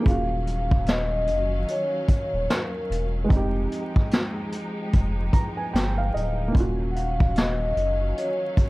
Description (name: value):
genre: lo-fi hip hop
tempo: 74 BPM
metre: 4/4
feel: swing 61% on 16ths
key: Eb dorian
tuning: A4 = 440 Hz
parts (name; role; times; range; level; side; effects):
- vibraphone with soft mallets; melody; 0.0-8.7 s; Bb4 to Gb5; -27 LUFS; left 1 dB; low-pass filter, plate reverb
- felt-muted upright piano; accompaniment; 0.0-8.7 s; Ab3 to Bb5; -31 LUFS; right 2 dB; cassette tape, low-pass filter, plate reverb
- bright studio string section; sustained chords; 0.0-8.7 s; Eb3 to F5; -34 LUFS; left 1 dB; low-pass filter, plate reverb
- saturated sub bass; bass; 0.1-8.1 s; D1 to G1; -26 LUFS; equal; none
- vintage brush drum kit; drums; 0.1-8.7 s; hi-hat, kick drum, snare drum; -22 LUFS; equal; none
room: light reverb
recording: dark, warm production, vinyl crackle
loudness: -22 LUFS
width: side -20 dB against mid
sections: 0.0-8.7 A section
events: felt piano fill 4.9-6.5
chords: 0.1 Ebm9; 3.3 Fm9; 6.5 Ebm9